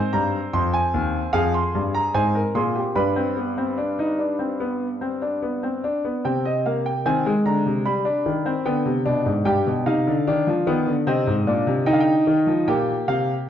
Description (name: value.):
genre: classical, baroque-style 4-part fugue for grand piano.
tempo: 74 BPM.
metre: 4/4.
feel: straight.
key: C minor.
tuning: A4 = 441 Hz.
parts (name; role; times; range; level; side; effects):
clear concert grand piano; solo; 0.0-13.5 s; Eb2 to C6; -19 LUFS; equal; none.
room: wet recital hall reverb, RT60 1.5 s.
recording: dark, warm production, nothing above 7.9 kHz.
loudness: -19 LUFS.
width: side -10 dB against mid.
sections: 0.0-6.2 A section; 6.2-13.5 B section.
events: none.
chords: 0.0 Ab; 1.3 Fm; 3.0 G; 6.2 Cm; 7.9 G; 9.5 G7; 11.1 Cm; 12.7 Gm/Bb.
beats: 0.53 1.33 2.14 | 2.95 3.78 4.60 5.42 | 6.24 7.05 7.86 8.66 | 9.47 10.27 11.07 11.88 | 12.69 13.49.